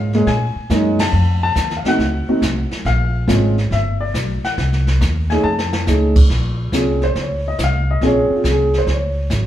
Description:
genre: jazz piano trio.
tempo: 139 BPM.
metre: 4/4.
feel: swing 68% on 8ths.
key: Bb minor.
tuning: A4 = 445 Hz.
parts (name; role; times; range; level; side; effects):
dark baby grand piano; melody; 0.0-9.5 s; Ab3 to A5; -18 LUFS; equal; none.
upright bass; bass; 0.0-9.5 s; G1 to Bb2; -18 LUFS; equal; none.
jazz brush drum kit; drums; 0.1-9.5 s; brushed snare drum, crash cymbal, hi-hat, kick drum, ride cymbal, snare drum; -21 LUFS; right 1 dB; none.
room: wet large studio reverb, RT60 0.9 s.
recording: heard from further back in the room.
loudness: -15 LUFS.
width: side -12 dB against mid.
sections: 0.0-6.3 A section; 6.3-9.5 B section.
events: band accent 0.9; drum fill 5.4-5.9; grand piano solo 6.3-9.5.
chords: 0.0 Gbmaj7; 1.1 F7b9; 2.9 Bbm9; 3.7 G; 4.6 Cdim; 5.4 F7alt; 6.3 Bbm9.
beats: 0.28 0.71 | 1.14 1.57 2.00 2.43 | 2.86 3.29 3.72 4.15 | 4.58 5.01 5.44 5.87 | 6.30 6.73 7.16 7.59 | 8.02 8.45 8.88 9.31.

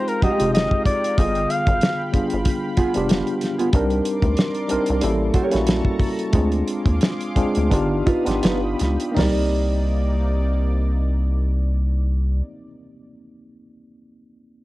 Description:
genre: R&B, neo-soul.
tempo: 80-94 BPM.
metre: 4/4.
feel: swing 54% on 16ths.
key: C minor.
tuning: A4 = 440 Hz.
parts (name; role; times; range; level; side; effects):
breathy flugelhorn; melody; 0.0-2.1 s; Bb4 to F5; -23 LUFS; left 1 dB; cassette tape, analog delay.
tine electric piano; accompaniment; 0.0-14.6 s; D3 to D5; -24 LUFS; left 1 dB; overdrive, fast stereo tremolo, cassette tape.
lush unison pad; sustained chords; 0.0-12.4 s; C3 to Eb6; -34 LUFS; right 1 dB; chorus, cassette tape, plate reverb.
damped 70s drum kit; drums; 0.1-9.4 s; hi-hat, kick drum, snare drum, toms; -21 LUFS; equal; cassette tape.
nylon-string guitar; second line; 0.2-12.7 s; Ab3 to D5; -25 LUFS; right 4 dB; cassette tape, plate reverb.
rubbery square bass; bass; 0.2-12.4 s; F1 to Eb2; -21 LUFS; equal; none.
room: light reverb.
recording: home recording on cassette.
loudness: -18 LUFS.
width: side -18 dB against mid.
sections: 0.0-9.2 A section; 9.2-12.2 B section.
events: slowing down 3.7-9.2.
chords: 0.0 Fm9; 1.2 G7b9; 3.7 Cm9; 5.0 A7b9; 6.3 Dm7b5; 7.7 G7b13; 9.2 Cm9.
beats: 0.54 | 1.18 1.81 2.45 3.09 | 3.73 4.37 5.01 5.67 | 6.33 7.01 7.71 8.42 | 9.16 9.91 10.66 11.41.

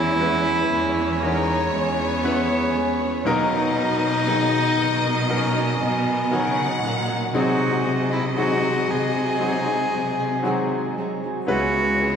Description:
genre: pop ballad.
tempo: 59 BPM.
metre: 4/4.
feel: straight.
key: B major.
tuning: A4 = 440 Hz.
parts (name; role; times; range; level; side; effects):
rich cello; melody; 0.0-12.2 s; B3 to G#4; -24 LUFS; equal; none.
warm studio violin section; second line; 0.0-12.2 s; B4 to F#5; -28 LUFS; left 1 dB; none.
clear baby grand piano; accompaniment; 0.0-12.2 s; B2 to C#5; -26 LUFS; left 2 dB; none.
warm brass ensemble; sustained chords; 0.0-12.2 s; B3 to A#5; -31 LUFS; right 1 dB; none.
nylon-string guitar; arpeggios; 0.0-12.2 s; B2 to B4; -30 LUFS; right 4 dB; none.
clear studio cello section; bass; 0.0-12.2 s; C#2 to C#3; -26 LUFS; equal; none.
room: wet cathedral reverb, RT60 4.7 s.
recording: recorded in a church or concert hall.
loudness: -19 LUFS.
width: side -7 dB against mid.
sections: 0.0-12.2 A section.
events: none.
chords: 0.0 E6; 3.3 Bmaj7; 7.3 G#7/B#; 11.5 C#m7.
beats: 0.20 1.22 2.24 | 3.26 4.28 5.30 6.32 | 7.34 8.37 9.41 10.45 | 11.49.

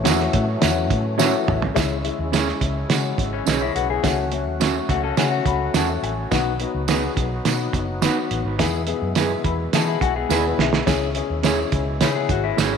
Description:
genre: uptempo 1960s-style soul.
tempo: 105 BPM.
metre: 4/4.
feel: straight.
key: unclear.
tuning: A4 = 439 Hz.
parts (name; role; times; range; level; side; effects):
warm upright piano; accompaniment; 0.0-12.8 s; G#3 to B5; -25 LUFS; left 12 dB; none.
percussive tonewheel organ; sustained chords; 0.0-12.8 s; B2 to F#4; -31 LUFS; equal; slow rotary speaker, overdrive, chorus vibrato.
mellow electric guitar; stabs; 0.0-12.7 s; B3 to C#5; -29 LUFS; right 11 dB; spring reverb, tape echo.
vintage muted fingered electric bass; bass; 0.0-12.8 s; F#1 to E3; -26 LUFS; equal; none.
cloth-damped thuddy drum kit; drums; 0.1-12.7 s; hi-hat, kick drum, snare drum, toms; -23 LUFS; right 5 dB; none.
tambourine; percussion; 0.1-12.7 s; none; -32 LUFS; right 10 dB; none.
electric guitar through a small old amp; riff; 3.3-6.1, 9.7-12.8 s; E3 to B4; -26 LUFS; left 12 dB; none.
room: moderate plate reverb, RT60 3.0 s.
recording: 1960s-style stereo with parts hard left and right.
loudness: -19 LUFS.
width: side -6 dB against mid.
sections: 0.0-1.8 A section; 1.8-12.8 B section.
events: drum fill 1.2-1.8, 10.3-10.9; upright piano fill 5.2-6.3, 9.2-10.9.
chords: 0.0 A6; 1.8 C#m; 4.0 F#m/C#; 6.3 B; 8.6 E; 10.9 C#m.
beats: 0.05 0.62 1.19 | 1.76 2.33 2.90 3.47 | 4.04 4.61 5.18 5.75 | 6.32 6.89 7.46 8.03 | 8.60 9.17 9.74 10.31 | 10.88 11.45 12.02 12.58.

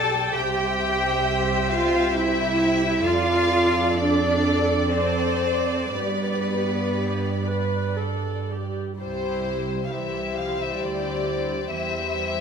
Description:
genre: classical, slow romantic movement for string orchestra.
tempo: 58-68 BPM.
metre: 3/4.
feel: rubato.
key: C major.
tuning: A4 = 438 Hz.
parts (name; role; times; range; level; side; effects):
warm chamber violin section; melody; 0.0-12.4 s; B4 to A5; -27 LUFS; left 4 dB; none.
dark studio violin section; second line; 0.0-12.4 s; G4 to G5; -29 LUFS; left 1 dB; none.
dark chamber viola section; accompaniment; 0.0-12.4 s; G3 to D5; -29 LUFS; right 2 dB; none.
clear chamber double bass section; bass; 0.0-12.4 s; B1 to G2; -28 LUFS; right 4 dB; none.
dark chamber cello section; bass; 0.0-12.4 s; C3 to A4; -26 LUFS; right 1 dB; none.
room: moderate scoring stage reverb, RT60 1.9 s.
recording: none.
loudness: -21 LUFS.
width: side -6 dB against mid.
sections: 0.0-9.0 A section; 9.0-12.4 B section.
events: none.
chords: 0.3 C; 3.0 Dm/F; 5.9 G; 9.0 C; 11.7 C/E.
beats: | 0.35 1.26 2.16 | 3.05 3.96 4.91 | 5.94 6.97 7.99 | 9.00 9.91 10.81 | 11.69.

